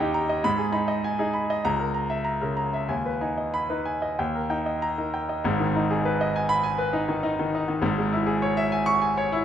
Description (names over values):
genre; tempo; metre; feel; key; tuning
classical, virtuoso piano study; 92-102 BPM; 4/4; rubato; G# minor; A4 = 441 Hz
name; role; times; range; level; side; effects
clear concert grand piano; solo; 0.0-9.4 s; G#1 to C#6; -23 LUFS; equal; none
room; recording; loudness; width
wet recital hall reverb, RT60 1.6 s; none; -23 LUFS; side -9 dB against mid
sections
0.0-5.4 A section; 5.4-9.4 A section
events
none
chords
0.4 G#m; 1.6 A#dim/C#; 2.9 G#m/D#; 4.2 D#; 5.4 G#m; 7.8 C#m/G#